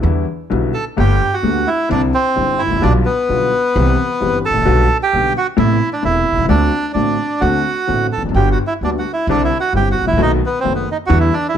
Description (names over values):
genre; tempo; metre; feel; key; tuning
tango; 130 BPM; 4/4; rubato; G major; A4 = 440 Hz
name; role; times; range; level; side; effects
warm upright piano; accompaniment; 0.0-11.6 s; E1 to G4; -18 LUFS; left 4 dB; none
upright bass; bass; 0.0-11.6 s; E1 to E2; -18 LUFS; right 1 dB; none
bandoneon; melody; 0.7-11.6 s; B3 to A4; -17 LUFS; right 2 dB; none
room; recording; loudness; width
light reverb; none; -13 LUFS; side -9 dB against mid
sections
1.0-11.6 A section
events
none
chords
0.0 Em7; 1.0 Gadd9; 1.9 Cadd9; 2.8 G7/B; 3.8 C; 4.7 Gmaj7/B; 5.6 Amadd9; 6.5 D7; 8.3 Gmaj7; 9.3 Cadd9; 10.2 B7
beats
0.04 0.52 | 0.99 1.45 1.91 2.38 | 2.83 3.29 3.75 4.21 | 4.66 5.12 5.57 6.02 | 6.48 6.94 7.41 7.87 | 8.34 8.81 9.27 9.73 | 10.19 10.65 11.10 11.56